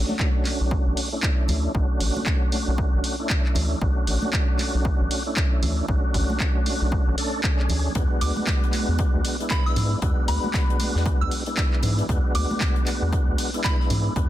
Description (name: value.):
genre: deep house.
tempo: 116 BPM.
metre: 4/4.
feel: swing 61% on 16ths.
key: B dorian.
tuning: A4 = 442 Hz.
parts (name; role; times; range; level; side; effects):
tonewheel organ; stabs; 0.0-14.3 s; G#3 to A4; -28 LUFS; equal; chorus vibrato, fast rotary speaker, sidechain pumping, low-pass filter, ping-pong delay.
round analog bass; bass; 0.0-14.3 s; A1 to G#2; -24 LUFS; equal; sidechain pumping.
congas; percussion; 0.1-14.0 s; none; -34 LUFS; right 2 dB; none.
electronic kick drum; drums; 0.2-14.3 s; none; -23 LUFS; equal; none.
punchy analog drum machine; drums; 0.2-14.0 s; handclaps, hi-hat; -29 LUFS; equal; none.
modern studio drum kit; drums; 8.0-14.3 s; hi-hat, snare drum; -39 LUFS; left 5 dB; high-pass filter on hats, high-pass filter on snare, high-pass filter on room.
soft synth bell; melody; 8.2-13.8 s; B5 to E6; -32 LUFS; equal; chorus, phaser, ping-pong delay.
room: studio ambience.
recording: dense, heavily limited modern master.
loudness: -20 LUFS.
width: side -13 dB against mid.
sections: 0.0-14.3 A section.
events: filter sweep on tonewheel organ 0.0-14.3.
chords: 0.0 Bm7 (rootless); 8.0 E9.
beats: 0.20 0.71 1.23 | 1.75 2.26 2.78 3.30 | 3.82 4.33 4.85 5.37 | 5.88 6.40 6.92 7.44 | 7.95 8.47 8.99 9.51 | 10.02 10.54 11.06 11.57 | 12.09 12.61 13.13 13.64 | 14.16.